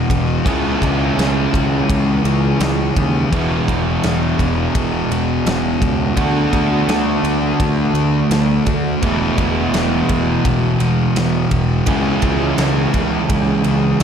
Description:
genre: rock, shoegaze and dream pop.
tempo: 84 BPM.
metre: 4/4.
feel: straight.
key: E major.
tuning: A4 = 439 Hz.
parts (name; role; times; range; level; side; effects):
crunchy overdriven guitar; riff; 0.0-14.0 s; E2 to F#4; -19 LUFS; right 7 dB; reverse reverb.
thick fuzz guitar; riff; 0.0-14.0 s; E2 to D4; -19 LUFS; left 5 dB; distortion, wide subtle chorus.
fuzz picked electric bass; bass; 0.0-14.0 s; E1 to D#2; -21 LUFS; equal; overdrive.
big rock drum kit; drums; 0.1-14.0 s; kick drum, ride cymbal, snare drum; -22 LUFS; equal; none.
room: wet huge ambient reverb, RT60 7.6 s.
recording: dreamy mix soaked in reverb.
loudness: -14 LUFS.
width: side -7 dB against mid.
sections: 0.0-14.0 A section.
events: none.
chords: 0.5 C#m; 3.3 E; 6.2 D; 9.0 E; 11.9 C#m.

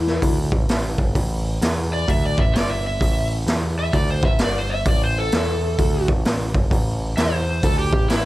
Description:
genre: blues rock power trio and southern rock.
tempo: 130 BPM.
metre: 4/4.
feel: swing 64% on 8ths.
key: A minor.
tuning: A4 = 440 Hz.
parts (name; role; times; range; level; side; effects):
overdriven slide guitar; melody; 0.0-8.3 s; E4 to E5; -25 LUFS; equal; none.
growling picked electric bass; bass; 0.0-8.3 s; G1 to E2; -23 LUFS; equal; overdrive.
raw garage drum kit; drums; 0.1-8.2 s; hi-hat, kick drum, snare drum; -20 LUFS; equal; none.
room: small room ambience.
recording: none.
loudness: -18 LUFS.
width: side -17 dB against mid.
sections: 0.0-8.3 A section.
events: electric slide guitar solo 0.0-8.3.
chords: 0.0 A5.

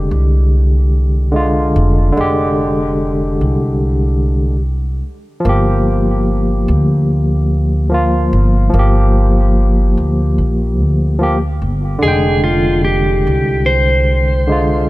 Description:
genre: trip hop.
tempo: 73 BPM.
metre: 4/4.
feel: straight.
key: F dorian.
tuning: A4 = 439 Hz.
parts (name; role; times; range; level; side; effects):
barky tine electric piano; accompaniment; 0.0-14.9 s; D3 to G5; -16 LUFS; equal; overdrive, harmonic tremolo, tape echo.
upright bass; bass; 0.0-14.9 s; F1 to D2; -14 LUFS; equal; none.
clean lap steel guitar; melody; 12.0-14.9 s; F4 to C5; -15 LUFS; equal; tape echo.
room: light reverb, studio reverb.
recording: none.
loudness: -12 LUFS.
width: side -18 dB against mid.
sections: 0.0-14.9 A section.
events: none.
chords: 0.0 Fm69; 5.4 Gm7; 12.0 Fm69.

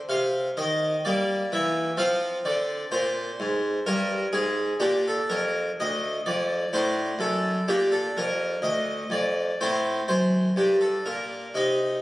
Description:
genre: classical, baroque-style suite movement for harpsichord.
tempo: 62 BPM.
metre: 3/4.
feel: rubato.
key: G minor from 4.8 s.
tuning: A4 = 439 Hz.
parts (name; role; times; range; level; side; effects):
harpsichord; solo; 0.0-12.0 s; D2 to F5; -23 LUFS; equal; none.
room: moderate recital hall reverb, RT60 1.5 s.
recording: recorded on a phone in the room, club reverb.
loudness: -23 LUFS.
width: side -17 dB against mid.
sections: 0.0-12.0 A section.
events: none.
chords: 0.0 F5; 1.0 Edim/G; 2.0 Fm; 4.8 Bb; 6.7 D7/A; 7.7 Ebmaj9#11; 9.6 F#dim/A; 10.6 Gm.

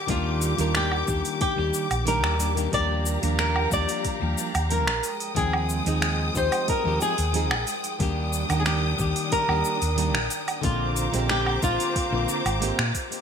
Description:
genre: sunset chillout.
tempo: 91 BPM.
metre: 4/4.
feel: straight.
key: Eb major.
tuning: A4 = 440 Hz.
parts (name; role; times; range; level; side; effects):
rich studio string section; sustained chords; 0.0-13.2 s; Ab3 to Eb6; -31 LUFS; left 2 dB; none.
flamenco guitar; melody; 0.1-12.9 s; F4 to D5; -28 LUFS; left 1 dB; wide subtle chorus, digital delay.
nylon-string guitar; accompaniment; 0.1-12.8 s; D3 to G5; -30 LUFS; moving between left 7 dB and right 7 dB; auto-pan, ping-pong delay.
hollow-body short-scale fingered electric bass; bass; 0.1-12.9 s; Ab1 to Bb2; -27 LUFS; equal; none.
electronic kick drum; drums; 0.1-13.1 s; none; -29 LUFS; equal; overdrive, studio reverb.
smooth R&B drum kit; drums; 0.1-13.2 s; cabasa, finger snaps, hi-hat, woodblock; -29 LUFS; right 2 dB; overdrive, studio reverb, gated reverb.
room: moderate plate reverb, RT60 2.2 s.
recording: bright 1980s-style digital production.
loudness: -22 LUFS.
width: side -7 dB against mid.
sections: 0.0-13.2 A section.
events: none.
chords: 0.0 Ebmaj7; 2.7 Gm7/Eb; 5.0 Fm9/Eb; 8.0 Ebmaj7; 10.6 Bb9.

